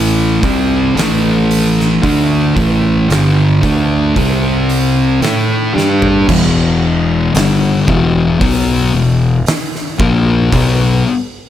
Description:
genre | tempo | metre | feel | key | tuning
stoner and doom metal | 56 BPM | 4/4 | straight | E minor | A4 = 442 Hz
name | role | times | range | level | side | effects
thick fuzz guitar | riff | 0.0-11.0 s | E2 to A4 | -13 LUFS | left 4 dB | distortion
thick fuzz guitar | riff | 0.0-6.3 s | G2 to A4 | -16 LUFS | right 9 dB | distortion
fuzz fingered electric bass | bass | 0.0-11.0 s | E1 to A2 | -17 LUFS | right 1 dB | overdrive, tube saturation
oversized low-tuned drum kit | drums | 0.4-10.8 s | crash cymbal, hi-hat, kick drum, snare drum, toms | -19 LUFS | right 1 dB | none
room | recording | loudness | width
small room reverb | none | -10 LUFS | side -11 dB against mid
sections
0.0-6.3 A section; 6.3-11.5 B section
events
drum fill 5.8-6.3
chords
0.0 A5; 4.2 C5; 5.2 A5; 6.3 Em

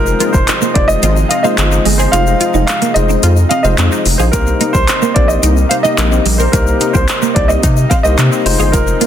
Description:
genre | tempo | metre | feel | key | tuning
dance-pop | 109 BPM | 4/4 | straight | unclear | A4 = 440 Hz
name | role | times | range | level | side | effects
dark grand piano | melody | 0.0-9.1 s | Bb4 to F5 | -17 LUFS | right 2 dB | ping-pong delay
barky tine electric piano | accompaniment | 0.0-9.1 s | Ab3 to Eb5 | -19 LUFS | left 7 dB | sidechain pumping
lush unison pad | sustained chords | 0.0-9.1 s | C3 to Eb4 | -22 LUFS | equal | chorus, sidechain pumping
wide unison pluck | arpeggios | 0.0-9.1 s | Ab3 to F5 | -23 LUFS | left 1 dB | sidechain pumping, ping-pong delay
twelve-string electric guitar | riff | 0.0-9.1 s | G3 to F4 | -19 LUFS | right 6 dB | ensemble chorus
round analog bass | bass | 0.0-9.0 s | F1 to C3 | -14 LUFS | equal | sidechain pumping
egg shaker | percussion | 0.1-9.1 s | none | -27 LUFS | left 12 dB | none
deep house drum kit | drums | 0.2-9.1 s | handclaps, hi-hat, kick drum | -15 LUFS | equal | none
room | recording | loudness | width
little or no reverb | dense, heavily limited modern master | -10 LUFS | side -10 dB against mid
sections
0.0-9.1 A section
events
kick muted 2.1-4.3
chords
0.0 Fm7; 4.3 Cm7; 8.5 Fm7

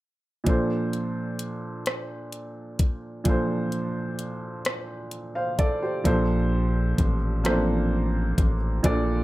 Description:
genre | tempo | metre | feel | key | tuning
slow six-eight R&B | 43 BPM (dotted quarters) | 6/8 | straight | Bb major | A4 = 438 Hz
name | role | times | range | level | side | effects
warm grand piano | accompaniment | 0.4-9.2 s | Bb2 to F5 | -26 LUFS | right 1 dB | none
smooth R&B drum kit | drums | 0.5-9.1 s | hi-hat, kick drum, rim click | -24 LUFS | left 1 dB | none
rubbery square bass | bass | 6.1-9.2 s | A1 to Bb1 | -25 LUFS | equal | none
room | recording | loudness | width
light reverb | none | -23 LUFS | side -17 dB against mid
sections
0.5-6.1 A section; 6.1-9.2 B section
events
none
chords
0.5 Bbmaj9

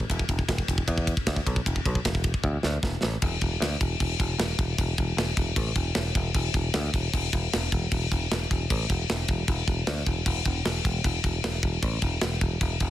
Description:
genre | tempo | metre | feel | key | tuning
heavy metal | 153 BPM | 4/4 | straight | unclear | A4 = 441 Hz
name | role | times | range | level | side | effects
picked electric bass | bass | 0.0-12.9 s | E1 to E2 | -28 LUFS | equal | none
tight metal drum kit | drums | 0.0-12.9 s | crash cymbal, kick drum, ride cymbal, snare drum | -26 LUFS | equal | none
room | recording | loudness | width
little or no reverb | dense, heavily limited modern master | -24 LUFS | side -13 dB against mid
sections
0.0-3.2 A section; 3.2-12.9 B section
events
drum fill 2.4-3.2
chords
none

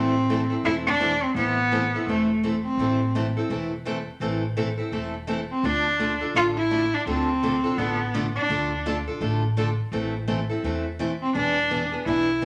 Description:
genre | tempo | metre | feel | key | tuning
acoustic string swing (jazz manouche) | 168 BPM | 4/4 | swing 61% on 8ths | A minor | A4 = 440 Hz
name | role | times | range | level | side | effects
clear cello | melody | 0.0-3.1, 5.5-8.8, 11.2-12.4 s | A3 to F4 | -25 LUFS | equal | none
picked steel-string acoustic guitar | accompaniment | 0.0-12.4 s | D3 to A4 | -30 LUFS | equal | none
upright bass | bass | 0.0-12.4 s | E1 to E2 | -33 LUFS | equal | none
room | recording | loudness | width
moderate large studio reverb, RT60 0.8 s | none | -25 LUFS | mono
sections
0.0-12.4 A section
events
none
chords
0.0 Am; 5.6 Dm; 9.9 Am; 11.3 E7

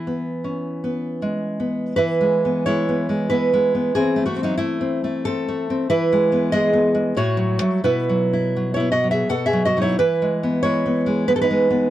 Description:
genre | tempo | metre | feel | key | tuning
romantic piece for solo classical guitar | 75-96 BPM | 3/4 | rubato | E major | A4 = 442 Hz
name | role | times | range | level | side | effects
nylon-string guitar | solo | 0.0-11.9 s | A2 to F#5 | -18 LUFS | equal | none
room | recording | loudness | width
light reverb | dry, close 1970s-style studio recording | -18 LUFS | side -13 dB against mid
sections
0.0-2.0 A section; 2.0-11.9 A section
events
none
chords
0.0 E; 3.9 Am/E; 5.9 E; 7.2 F#m/A; 7.8 Bsus4; 9.3 B; 10.0 E

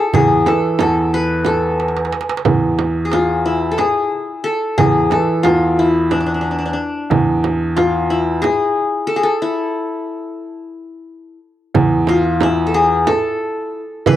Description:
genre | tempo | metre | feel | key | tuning
Turkish makam ensemble | 181 BPM (eighths) | 7/8 | straight | E makam hicaz | A4 = 440 Hz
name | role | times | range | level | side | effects
qanun | melody | 0.0-14.2 s | D4 to B4 | -17 LUFS | left 3 dB | cassette tape
warm baby grand piano | bass | 0.1-14.2 s | E2 to E3 | -18 LUFS | right 1 dB | none
darbuka | percussion | 0.1-14.2 s | none | -21 LUFS | right 5 dB | none
frame drum | percussion | 0.1-14.2 s | none | -20 LUFS | right 5 dB | none
room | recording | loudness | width
moderate spring reverb, RT60 2.1 s | home recording on cassette | -14 LUFS | side -12 dB against mid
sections
0.0-11.7 A section; 11.7-14.2 B section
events
drum fill 1.8-2.5; break 9.4-11.7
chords
none

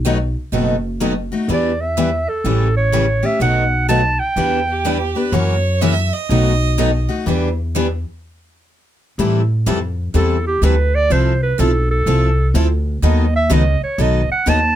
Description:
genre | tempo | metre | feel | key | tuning
acoustic string swing (jazz manouche) | 125 BPM | 4/4 | swing 64% on 8ths | E minor, A minor from 9.2 s | A4 = 440 Hz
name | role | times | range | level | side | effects
picked steel-string acoustic guitar | accompaniment | 0.0-14.6 s | B2 to B4 | -23 LUFS | right 6 dB | none
upright bass | bass | 0.0-14.8 s | F#1 to A2 | -17 LUFS | equal | none
picked steel-string acoustic guitar | accompaniment | 0.1-14.6 s | B2 to A4 | -20 LUFS | left 5 dB | none
breathy clarinet | melody | 1.5-5.2, 10.2-14.8 s | G4 to A5 | -19 LUFS | right 3 dB | none
rich violin | second line | 4.7-7.1 s | G4 to E5 | -22 LUFS | right 6 dB | none
room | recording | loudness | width
little or no reverb | close, detailed microphones | -14 LUFS | side -11 dB against mid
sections
0.0-9.2 A section; 9.2-14.8 B section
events
stop 8.2-9.2; clarinet solo 9.2-14.8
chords
0.0 B7; 1.5 Em7; 2.5 A7; 3.4 B7; 4.4 Em7; 5.3 F#7; 6.3 B7; 7.3 Em7; 9.2 Am7; 11.1 Fmaj7; 13.0 B7

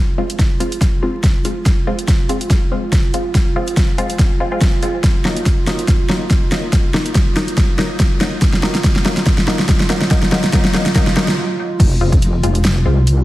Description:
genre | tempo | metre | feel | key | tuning
deep dubstep | 142 BPM | 4/4 | swing 55% on 16ths, half-time | F phrygian | A4 = 440 Hz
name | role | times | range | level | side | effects
dark analog pad | sustained chords | 0.0-13.2 s | F4 | -26 LUFS | right 4 dB | chorus
filtered dub chord stab | stabs | 0.2-13.0 s | Gb3 to F4 | -23 LUFS | left 2 dB | phaser, cassette tape, dub echo
deep house drum kit | drums | 0.3-13.2 s | crash cymbal, hi-hat, snare drum | -18 LUFS | equal | overdrive, studio reverb
electronic kick drum | drums | 0.4-12.2 s | none | -15 LUFS | equal | overdrive, studio reverb
wobble bass | bass | 11.8-13.2 s | F1 to C2 | -14 LUFS | equal | chorus
room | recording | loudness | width
moderate echo chamber reverb, RT60 1.6 s, digital ambience | dense, heavily limited modern master, vinyl crackle, lossy compression artefacts | -13 LUFS | side -16 dB against mid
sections
0.0-11.8 A section; 11.8-13.2 B section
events
build-up 0.0-11.8; drum fill 0.0-11.4; break 11.4-11.8; drop 11.8-13.2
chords
0.0 Fm; 5.0 Ebm; 11.8 Fm

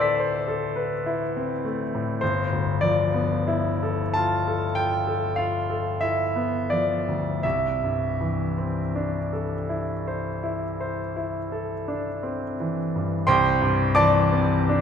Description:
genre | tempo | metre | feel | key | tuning
classical, impressionist solo piano | 40-54 BPM | 4/4 | rubato | C major | A4 = 440 Hz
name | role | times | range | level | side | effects
clear grand piano | solo | 0.0-14.8 s | G1 to B6 | -22 LUFS | left 1 dB | none
room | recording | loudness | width
wet church reverb, RT60 2.7 s | recorded in a church or concert hall | -22 LUFS | side -7 dB against mid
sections
0.0-13.3 A section; 13.3-14.8 B section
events
none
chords
0.0 D13; 2.2 G13; 7.4 C69

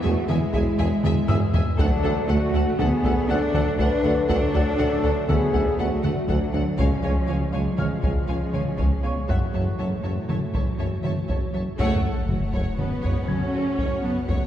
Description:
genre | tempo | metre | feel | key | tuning
cinematic, hybrid orchestral and electronic film score | 120 BPM | 5/4 | straight | F# minor | A4 = 440 Hz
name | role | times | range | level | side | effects
warm symphonic violin section | melody | 0.0-14.5 s | A4 to A5 | -40 LUFS | left 3 dB | none
rich symphonic violin section | second line | 0.0-14.5 s | F#4 to F#5 | -36 LUFS | left 2 dB | none
warm symphonic viola section | accompaniment | 0.0-14.5 s | A3 to C#5 | -34 LUFS | equal | none
granular cloud pad | sustained chords | 0.1-14.5 s | E3 to E5 | -35 LUFS | equal | none
mellow French horn section | sustained chords | 0.0-14.5 s | F#3 to B4 | -29 LUFS | left 2 dB | none
warm trombone section | sustained chords | 0.0-14.5 s | C#3 to A3 | -36 LUFS | right 1 dB | none
chorused synth bass | riff | 0.0-14.4 s | C#2 to F#3 | -31 LUFS | left 1 dB | none
rich symphonic cello section | bass | 0.0-14.5 s | A2 to D4 | -28 LUFS | right 1 dB | none
rich symphonic double bass section | bass | 0.0-14.4 s | C#2 to F#2 | -28 LUFS | right 1 dB | none
warm tuba | bass | 0.0-14.4 s | E1 to D2 | -31 LUFS | right 2 dB | none
bright baby grand piano | texture | 0.0-14.5 s | C#5 to G#6 | -38 LUFS | left 1 dB | tape echo
solo taiko drums | drums | 0.3-14.5 s | none | -27 LUFS | equal | none
sub drop | sound effects | 11.8-14.3 s | none | -30 LUFS | equal | none
room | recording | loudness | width
wet scoring stage reverb, RT60 1.6 s | heard from further back in the room | -20 LUFS | side -11 dB against mid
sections
0.0-11.8 A section; 11.8-14.5 B section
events
drum fill 1.0-1.8; band accent 11.8-12.3; impact 11.8-14.3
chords
0.0 E; 1.8 D; 6.8 C#; 9.3 F#m7; 11.8 F#m

